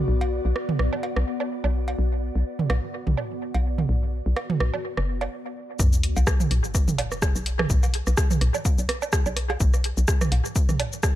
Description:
minimal techno; 126 BPM; 4/4; swing 56% on 16ths; B minor; A4 = 440 Hz
hollow knocking FM bass; bass; 0.0-10.8 s; F#1 to B1; -23 LUFS; equal; sidechain pumping
ethereal airy pad; texture; 0.0-5.3 s; B3 to D5; -32 LUFS; left 1 dB; ensemble chorus, built-in reverb, phaser, sidechain pumping
garage drum kit; percussion; 0.2-11.1 s; cowbell, rim click, toms, woodblock; -28 LUFS; right 4 dB; dub echo
electronic kick drum; drums; 5.8-11.1 s; -23 LUFS; equal
punchy analog drum machine; drums; 5.8-11.1 s; hi-hat, rim click, shaker; -29 LUFS; equal; low-pass filter on perc, low-pass filter on hats, low-pass filter on snare, analog delay
sub drop; sound effects; 5.8-7.7 s; -30 LUFS; left 1 dB
digital ambience; echo-heavy mix; -21 LUFS; side -13 dB against mid
0.0-5.8 A section; 5.8-11.2 B section
stop 5.3-5.8; drop 5.8-11.2; impact 5.8-7.7
0.0 Bm; 5.8 B5
| 0.08 0.56 1.03 1.51 | 1.99 2.46 2.94 3.41 | 3.89 4.37 4.84 5.32 | 5.79 6.27 6.75 7.22 | 7.70 8.18 8.65 9.13 | 9.60 10.08 10.56 11.03

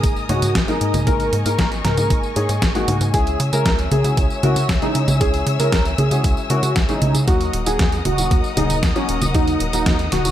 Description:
italo disco; 116 BPM; 4/4; straight; C# dorian; A4 = 440 Hz
wide unison lead; melody; 0.0-10.3 s; C#4 to A#4; -23 LUFS; equal; wide subtle chorus, digital delay
muted studio string section; sustained chords; 0.0-10.3 s; A#4 to E6; -27 LUFS; left 3 dB
dark grand piano; stabs; 0.0-10.3 s; G#2 to C#5; -26 LUFS; left 3 dB
tight sequencer bass; bass; 0.0-10.3 s; D#1 to C#3; -22 LUFS; equal
detuned 8-bit digital drum machine; drums; 0.0-10.3 s; congas, hi-hat, snare drum, tambourine; -22 LUFS; right 1 dB; gated reverb
electronic kick drum; drums; 0.0-10.0 s; -20 LUFS; equal
little or no reverb; -16 LUFS; side -11 dB against mid
0.0-10.3 A section
0.0 G#sus2; 3.1 C#m; 7.3 D#m
0.04 0.55 | 1.07 1.59 2.10 2.62 | 3.14 3.66 4.17 4.69 | 5.21 5.72 6.24 6.76 | 7.28 7.79 8.31 8.83 | 9.35 9.86

